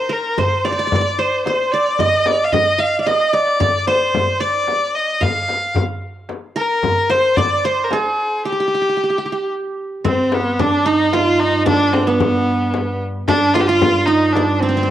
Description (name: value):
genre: Arabic maqam ensemble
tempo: 112 BPM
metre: 3/4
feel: straight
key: G maqam bayati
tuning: A4 = 438 Hz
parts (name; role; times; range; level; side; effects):
- clear violin; melody; 0.0-14.9 s; B3 to F5; -18 LUFS; left 2 dB; cassette tape
- qanun; second line; 0.0-14.9 s; B3 to F5; -19 LUFS; right 4 dB; cassette tape
- darbuka; percussion; 0.4-8.0 s; none; -26 LUFS; right 2 dB; none
- frame drum; percussion; 0.4-14.5 s; none; -22 LUFS; left 6 dB; none
- warm double bass; drone; 10.0-14.9 s; G2; -24 LUFS; left 1 dB; stereo widening, cassette tape
room: moderate spring reverb, RT60 1.6 s, small room ambience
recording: home recording on cassette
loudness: -15 LUFS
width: side -12 dB against mid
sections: 0.0-10.1 A section; 10.1-14.9 B section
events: drum fill 3.1-3.6; break 8.4-10.1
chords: none